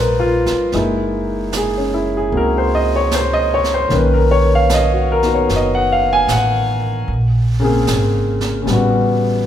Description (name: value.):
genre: jazz ballad.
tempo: 76 BPM.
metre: 4/4.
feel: swing 68% on 8ths.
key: unclear.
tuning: A4 = 440 Hz.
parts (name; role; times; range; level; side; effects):
warm concert grand piano; accompaniment; 0.0-9.5 s; C3 to Ab5; -15 LUFS; left 1 dB; none.
upright bass; bass; 0.0-9.5 s; Gb1 to Db2; -19 LUFS; right 1 dB; none.
jazz brush drum kit; drums; 0.5-9.5 s; brushed snare drum, hi-hat, snare drum; -27 LUFS; right 4 dB; none.
room: moderate recital hall reverb, RT60 1.8 s.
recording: recorded in a church or concert hall.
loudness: -14 LUFS.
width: side -10 dB against mid.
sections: 0.0-9.5 A section.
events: none.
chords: 0.0 Eb69; 0.7 Gb13; 3.9 Bmaj9; 7.1 Bbm9; 8.7 A13.